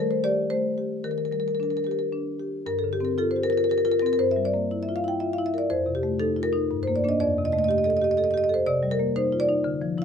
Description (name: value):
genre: classical, contemporary piece for solo marimba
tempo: 109-124 BPM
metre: 3/4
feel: rubato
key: G minor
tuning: A4 = 439 Hz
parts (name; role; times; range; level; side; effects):
- marimba with medium mallets; solo; 0.0-10.0 s; F2 to G5; -22 LUFS; left 1 dB; none
room: little or no reverb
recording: close, detailed microphones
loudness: -22 LUFS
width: side -7 dB against mid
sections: 0.0-2.7 A section; 2.7-10.0 B section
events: none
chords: 0.0 Eb; 1.0 Ebmaj7; 2.7 Gm7; 4.2 Gm6; 5.7 F7; 6.7 Gm; 7.2 F9; 8.7 Cm7